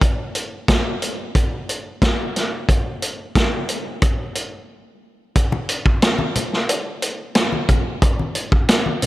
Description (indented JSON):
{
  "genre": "rock",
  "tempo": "90 BPM",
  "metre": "4/4",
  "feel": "straight",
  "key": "none",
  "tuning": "none",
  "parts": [
    { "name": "vintage drum kit", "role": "drums", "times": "0.0-9.1 s", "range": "hi-hat, kick drum, snare drum", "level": "-18 LUFS", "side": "equal", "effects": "none" },
    { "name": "congas", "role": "percussion", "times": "5.5-9.1 s", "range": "none", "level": "-27 LUFS", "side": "left 2 dB", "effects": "none" }
  ],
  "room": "light reverb, small room ambience",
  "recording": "none",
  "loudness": "-18 LUFS",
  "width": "side -16 dB against mid",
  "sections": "0.0-5.4 A section; 5.4-9.1 B section",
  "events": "break 4.7-5.4",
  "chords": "none",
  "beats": "| 0.01 0.68 1.35 2.02 | 2.68 3.35 4.02 4.68 | 5.35 6.02 6.68 7.35 | 8.02 8.69"
}